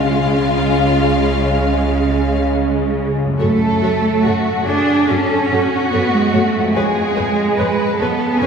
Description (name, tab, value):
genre	classical, slow romantic movement for symphony orchestra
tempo	62-74 BPM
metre	4/4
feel	rubato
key	F# minor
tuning	A4 = 440 Hz
part	warm symphonic violin section	melody	0.0-8.5 s	C#5 to E#5	-27 LUFS	left 2 dB	none
part	warm symphonic violin section	second line	0.0-8.5 s	E#4 to B4	-21 LUFS	left 2 dB	none
part	warm symphonic viola section	accompaniment	0.0-8.5 s	G#3 to B4	-22 LUFS	right 2 dB	none
part	mellow French horn section	sustained chords	0.0-3.1 s	G#3 to C#4	-24 LUFS	right 1 dB	none
part	concert harp	arpeggios	0.0-8.5 s	E#2 to C#5	-24 LUFS	left 5 dB	none
part	rich symphonic cello section	bass	0.0-8.5 s	C#3 to D4	-18 LUFS	right 3 dB	none
part	warm symphonic double bass section	bass	0.0-8.5 s	C#2 to F#2	-23 LUFS	right 2 dB	none
room	wet church reverb, RT60 2.7 s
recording	minimal, uncompressed stereo recording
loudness	-14 LUFS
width	side -6 dB against mid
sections	0.0-3.4 A section; 3.4-8.5 B section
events	none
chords	0.0 C#; 3.4 F#m; 6.7 C#7/E#